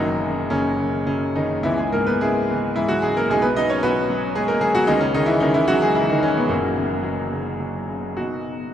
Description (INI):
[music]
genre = classical, lyrical solo piano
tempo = 110 BPM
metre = 3/4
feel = uneven beats, rubato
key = unclear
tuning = A4 = 440 Hz
[part]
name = bright grand piano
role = solo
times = 0.0-8.7 s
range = F#1 to D#5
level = -18 LUFS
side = equal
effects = none
[sound]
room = wet cathedral reverb, RT60 6.6 s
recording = in a vast, echoing space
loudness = -18 LUFS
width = side -10 dB against mid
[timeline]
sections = 0.0-8.2 A section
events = none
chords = 0.0 F#; 1.6 C#m7; 3.3 G#m7/B; 4.9 C#madd9; 6.5 F#; 8.2 B